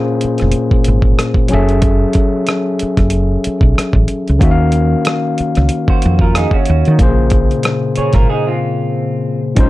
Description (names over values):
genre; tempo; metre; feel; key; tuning
R&B, neo-soul; 93 BPM; 4/4; swing 55% on 16ths; Bb minor; A4 = 440 Hz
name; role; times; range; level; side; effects
overdriven tine electric piano; accompaniment; 0.0-9.7 s; Bb2 to F5; -16 LUFS; left 2 dB; none
woody fretless electric bass; bass; 0.2-9.7 s; F1 to Eb3; -14 LUFS; equal; none
dusty soul sampler-style drum kit; drums; 0.2-9.7 s; hi-hat, kick drum, rim click; -14 LUFS; equal; none
electric guitar through a small old amp; second line; 5.9-9.4 s; C4 to Db5; -20 LUFS; right 5 dB; slapback echo
room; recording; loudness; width
light reverb; dark, warm production; -11 LUFS; side -17 dB against mid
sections
0.0-9.6 A section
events
break 8.3-9.6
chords
0.0 Bbm9; 1.5 Gbm9; 4.4 Ebm9; 7.0 Bbm9